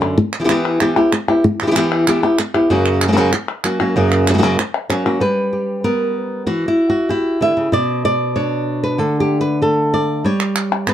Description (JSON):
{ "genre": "flamenco", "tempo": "191 BPM", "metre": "4/4", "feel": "straight", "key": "unclear", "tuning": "A4 = 444 Hz", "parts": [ { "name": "flamenco guitar", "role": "melody", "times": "0.0-10.9 s", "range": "F#2 to E5", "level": "-15 LUFS", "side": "equal", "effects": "none" }, { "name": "palmas hand claps", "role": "percussion", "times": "0.0-5.2, 10.4-10.9 s", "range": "none", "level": "-21 LUFS", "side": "left 1 dB", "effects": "none" } ], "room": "light reverb", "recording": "dark, warm production", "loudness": "-14 LUFS", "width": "side -10 dB against mid", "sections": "0.2-5.2 A section; 5.2-10.9 B section", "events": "none", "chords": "0.2 Em; 2.7 F#; 5.2 G; 6.5 Em; 7.7 Bm; 9.0 D5; 10.2 N.C.", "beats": "| 0.17 0.49 0.80 1.12 | 1.43 1.75 2.06 2.38 | 2.70 3.01 3.33 3.64 | 3.96 4.27 4.59 4.90 | 5.22 5.53 5.85 6.16 | 6.47 6.79 7.10 7.42 | 7.73 8.05 8.36 8.68 | 8.99 9.30 9.62 9.93 | 10.24 10.56 10.87" }